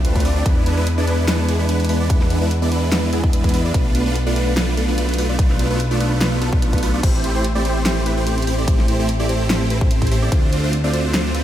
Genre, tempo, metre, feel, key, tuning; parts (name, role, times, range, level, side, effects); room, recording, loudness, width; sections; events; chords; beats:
future bass; 146 BPM; 4/4; swing 53% on 16ths, half-time; A minor; A4 = 440 Hz
supersaw chords; riff; 0.0-11.4 s; G#3 to D5; -21 LUFS; right 1 dB; sidechain pumping, analog delay
fat analog bass; bass; 0.0-11.4 s; A1 to E2; -20 LUFS; equal; sidechain pumping
pop drum kit; drums; 0.0-11.4 s; crash cymbal, hi-hat, ride cymbal, snare drum; -25 LUFS; equal
electronic kick drum; drums; 0.2-10.4 s; -18 LUFS; equal
light reverb; -16 LUFS; side -12 dB against mid
0.0-11.4 A section
0.5 E7; 3.7 Bm7b5; 7.0 Am7; 10.3 Dm7
0.05 | 0.46 0.87 1.28 1.69 | 2.10 2.51 2.92 3.33 | 3.75 4.16 4.57 4.98 | 5.39 5.80 6.21 6.62 | 7.03 7.44 7.86 8.27 | 8.68 9.09 9.50 9.91 | 10.32 10.73 11.14